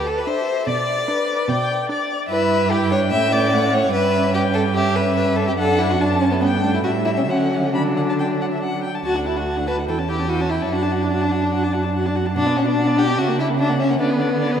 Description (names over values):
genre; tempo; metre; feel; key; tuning
quick classical-period movement for string quartet; 146 BPM; 4/4; rubato; D major; A4 = 439 Hz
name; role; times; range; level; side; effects
rich violin; melody; 0.0-14.6 s; B4 to B5; -26 LUFS; left 4 dB; none
rich violin; second line; 0.0-14.6 s; B3 to E5; -20 LUFS; left 1 dB; none
warm cello; bass; 0.0-14.6 s; D2 to D3; -23 LUFS; right 4 dB; none
warm viola; accompaniment; 0.3-14.6 s; F#3 to F#4; -25 LUFS; right 2 dB; none
room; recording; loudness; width
wet cathedral reverb, RT60 5.4 s; in a vast, echoing space; -17 LUFS; side -8 dB against mid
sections
0.0-9.1 A section; 9.1-14.6 B section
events
none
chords
0.0 G (rootless); 0.7 G/B; 2.3 Em/G; 3.1 A; 3.9 A9/G (rootless); 5.6 D/F#; 6.4 G; 6.8 A5; 7.3 D; 9.9 A7/E; 10.7 D/F#; 12.4 Bm; 13.2 F#7/C#; 14.0 Bm/D